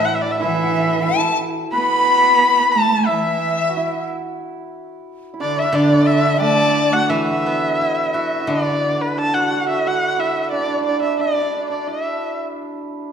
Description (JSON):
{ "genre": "chinese traditional, Chinese chamber ensemble", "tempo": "89 BPM", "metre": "2/4", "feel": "rubato", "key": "unclear", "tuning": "A4 = 439 Hz", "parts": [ { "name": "dark erhu", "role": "melody", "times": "0.0-12.4 s", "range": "B4 to B5", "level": "-18 LUFS", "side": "left 1 dB", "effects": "none" }, { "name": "breathy dizi", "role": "second line", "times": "0.0-6.9 s", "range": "D5 to B5", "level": "-23 LUFS", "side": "left 6 dB", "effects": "none" }, { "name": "dark cello", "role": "second line", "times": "0.0-6.9 s", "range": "D3 to B3", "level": "-23 LUFS", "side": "right 4 dB", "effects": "none" }, { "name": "hammered dulcimer", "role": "second line", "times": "0.0-13.1 s", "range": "D4 to B4", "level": "-24 LUFS", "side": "right 3 dB", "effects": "none" }, { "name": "steel-string zither", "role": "accompaniment", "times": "0.0-1.1, 5.7-10.5 s", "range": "A2 to F#4", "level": "-23 LUFS", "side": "left 1 dB", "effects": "none" } ], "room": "wet recital hall reverb, RT60 1.7 s", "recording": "minimal, uncompressed stereo recording", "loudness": "-16 LUFS", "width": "side -7 dB against mid", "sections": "0.0-7.1 A section; 7.1-13.1 B section", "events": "none", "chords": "none" }